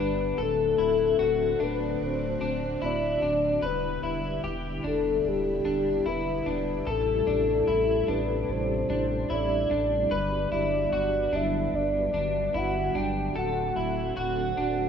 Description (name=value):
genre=dream pop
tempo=74 BPM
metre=4/4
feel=straight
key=G major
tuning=A4 = 441 Hz
part: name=soft octave-layered synth lead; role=melody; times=0.0-14.9 s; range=G4 to G5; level=-26 LUFS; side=left 2 dB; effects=chorus, tremolo, tape echo
part: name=ensemble organ-string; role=sustained chords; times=0.0-14.9 s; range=C3 to F#5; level=-33 LUFS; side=equal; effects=ensemble chorus
part: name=electric guitar at the edge of break-up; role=arpeggios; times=0.0-14.9 s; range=D4 to B4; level=-32 LUFS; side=left 1 dB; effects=analog chorus, tape echo
part: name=saturated sub bass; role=bass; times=0.0-14.9 s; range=D1 to A1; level=-34 LUFS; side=equal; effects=none
room=moderate lush hall reverb, RT60 2.8 s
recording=rough home demo mix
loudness=-24 LUFS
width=side -7 dB against mid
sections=0.0-14.9 A section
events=none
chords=0.4 D7; 3.6 Em7; 6.9 Am7; 10.1 Gmaj7; 13.4 D7